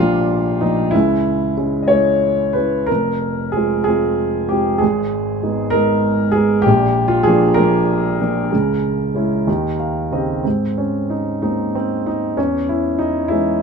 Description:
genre	classical, lyrical solo piano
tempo	64 BPM (dotted quarters)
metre	6/8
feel	rubato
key	unclear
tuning	A4 = 441 Hz
part	dark baby grand piano	solo	0.0-13.6 s	F1 to F5	-15 LUFS	equal	none
room	light reverb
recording	close, detailed microphones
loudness	-15 LUFS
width	side -5 dB against mid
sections	0.0-10.5 A section; 10.5-13.6 B section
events	grand piano fill 9.5-10.5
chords	0.0 Bb; 0.9 Dbm; 2.9 Fm; 4.8 Abm; 6.7 Bb; 8.5 Dbm; 9.5 Eb7; 10.5 Abadd9; 12.4 E6

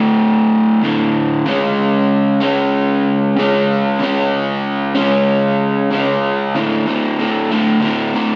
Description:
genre	rock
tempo	94 BPM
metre	4/4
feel	straight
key	unclear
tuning	A4 = 440 Hz
part	crunchy overdriven guitar	solo	0.0-8.4 s	D2 to C#4	-16 LUFS	equal	none
room	wet recital hall reverb, RT60 1.4 s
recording	big arena sound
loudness	-16 LUFS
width	mono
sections	0.0-6.6 A section; 6.6-8.4 B section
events	build-up 6.6-8.4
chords	0.0 D5; 1.5 C#5; 6.6 D5

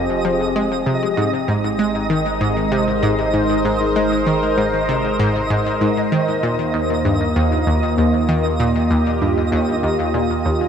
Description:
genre	ambient, sequencer-driven space music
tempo	97 BPM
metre	4/4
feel	straight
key	unclear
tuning	A4 = 443 Hz
part	phased analog pad	sustained chords	0.0-10.7 s	Eb3 to C5	-19 LUFS	equal	phaser, chorus
part	analog pluck	riff	0.0-10.7 s	Eb2 to Ab3	-20 LUFS	equal	chorus, ping-pong delay
part	round analog bass	bass	0.0-10.7 s	F1 to Eb2	-27 LUFS	equal	none
part	twinkling granular texture	texture	0.0-10.7 s	Eb5	-25 LUFS	right 3 dB	built-in reverb
room	wet concert hall reverb, RT60 2.2 s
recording	cassette tape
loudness	-16 LUFS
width	side -8 dB against mid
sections	0.0-10.7 A section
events	none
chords	0.0 Fm; 1.2 Ab; 6.1 Eb

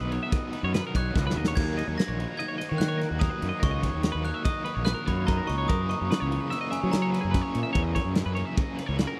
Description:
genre	math rock and midwest emo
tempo	145 BPM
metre	5/4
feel	straight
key	unclear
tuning	A4 = 439 Hz
part	twelve-string electric guitar	arpeggios	0.0-9.2 s	F#4 to E5	-38 LUFS	equal	harmonic tremolo
part	crunchy overdriven guitar	riff	0.0-9.2 s	F#2 to D#4	-36 LUFS	equal	tremolo
part	fuzz fingered electric bass	bass	0.0-9.0 s	A#1 to F#3	-31 LUFS	equal	overdrive
part	modern studio drum kit	drums	0.1-9.1 s	crash cymbal, kick drum, ride cymbal, snare drum	-32 LUFS	equal	none
part	glockenspiel with hard plastic mallets	melody	1.0-9.2 s	G#5 to A#6	-37 LUFS	equal	slapback echo
room	little or no reverb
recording	none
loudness	-27 LUFS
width	mono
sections	0.0-9.2 A section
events	drum fill 1.2-1.6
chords	0.0 Badd9; 1.6 D#m7; 5.7 F#7

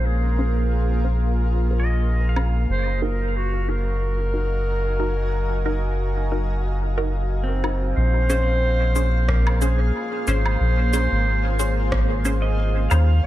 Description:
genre	ambient dub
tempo	91 BPM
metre	4/4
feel	swing 56% on 16ths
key	Bb minor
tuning	A4 = 442 Hz
part	warm clarinet	melody	0.0-13.3 s	Gb4 to C5	-28 LUFS	equal	dub echo
part	granular cloud pad	sustained chords	0.0-13.3 s	Bb3 to Bb5	-30 LUFS	equal	built-in reverb
part	soft dub sub bass	bass	0.0-13.3 s	Gb1 to Eb2	-20 LUFS	equal	tube saturation
part	filtered dub chord stab	stabs	0.4-13.1 s	Db4 to C5	-31 LUFS	equal	phaser, dub echo
part	pedal steel guitar	arpeggios	1.8-13.3 s	C4 to F5	-34 LUFS	right 3 dB	tape echo
part	electronic woodblock, shaker and rim click	drums	2.4-2.5, 7.6-13.1 s	none	-32 LUFS	right 1 dB	overdrive, low-pass filter on perc, low-pass filter on snare, low-pass filter on room, dub echo
part	electronic kick drum	drums	9.3-12.1 s	none	-27 LUFS	equal	none
room	light reverb, digital ambience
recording	none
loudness	-19 LUFS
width	side -14 dB against mid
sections	0.0-8.0 A section; 8.0-13.3 B section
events	none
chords	0.0 Bbm9; 2.7 Gb6; 8.0 Bbm9

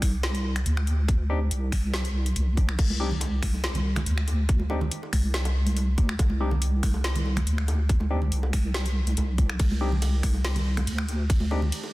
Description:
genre	deep dubstep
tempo	141 BPM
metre	4/4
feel	half-time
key	C minor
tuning	A4 = 440 Hz
part	deep soft wobble bass	bass	0.0-11.7 s	C2 to D2	-25 LUFS	equal	chorus
part	electronic kick drum	drums	0.0-11.4 s	none	-24 LUFS	equal	none
part	garage drum kit	drums	0.0-11.8 s	crash cymbal, finger snaps, hi-hat, ride cymbal, snare drum	-33 LUFS	left 1 dB	soft clipping on snare
part	barky tine electric piano	stabs	1.3-11.6 s	C4 to G4	-36 LUFS	left 3 dB	phaser, dub echo
part	bongos and congas	percussion	2.8-11.9 s	none	-34 LUFS	right 2 dB	dub echo
room	little or no reverb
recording	dense, heavily limited modern master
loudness	-23 LUFS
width	side -19 dB against mid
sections	0.0-11.9 A section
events	none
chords	0.0 Csus2

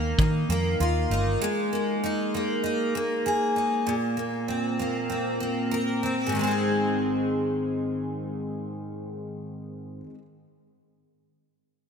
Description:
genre	pop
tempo	98 BPM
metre	4/4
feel	straight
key	Ab major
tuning	A4 = 439 Hz
part	picked steel-string acoustic guitar	accompaniment	0.0-10.2 s	Ab2 to Bb4	-25 LUFS	equal	double-tracked left and right
part	vintage muted fingered electric bass	bass	0.0-1.4 s	G1 to Eb3	-25 LUFS	equal	none
room	wet lush hall reverb, RT60 2.8 s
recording	bright 1980s-style digital production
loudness	-24 LUFS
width	side -6 dB against mid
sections	0.0-6.3 A section; 6.3-8.8 B section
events	none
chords	0.0 Ebsus2; 1.4 Absus2; 3.9 Bbsus2; 6.3 Ab

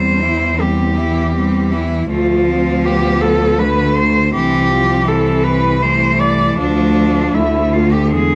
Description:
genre	classical, lyrical piece for cello ensemble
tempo	80 BPM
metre	3/4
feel	rubato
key	unclear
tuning	A4 = 440 Hz
part	rich cello	melody	0.0-8.3 s	D4 to D5	-19 LUFS	equal	none
part	rich cello	second line	0.0-8.3 s	G#3 to E4	-23 LUFS	equal	none
part	clear cello	accompaniment	0.0-8.3 s	D3 to G3	-22 LUFS	equal	none
part	clear cello	bass	0.0-8.3 s	C2 to E2	-20 LUFS	equal	none
room	moderate recital hall reverb, RT60 1.4 s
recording	close, detailed microphones, vinyl crackle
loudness	-15 LUFS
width	mono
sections	0.0-8.3 A section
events	none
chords	0.0 C/E; 2.1 Dm; 4.3 Am/C; 6.6 Dm; 7.4 Dmadd9

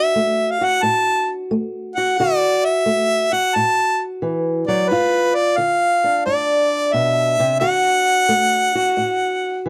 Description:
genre	acoustic country blues, solo or duo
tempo	88 BPM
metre	4/4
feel	swing 68% on 8ths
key	unclear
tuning	A4 = 440 Hz
part	clear harmonica	melody	0.0-9.6 s	B4 to A5	-19 LUFS	equal	none
part	fingerpicked old ladder-braced acoustic guitar	accompaniment	0.0-9.7 s	G2 to F#4	-24 LUFS	equal	none
room	little or no reverb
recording	dry, close 1970s-style studio recording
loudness	-18 LUFS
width	mono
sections	0.0-9.7 A section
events	none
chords	0.0 D; 4.9 G7; 7.6 D

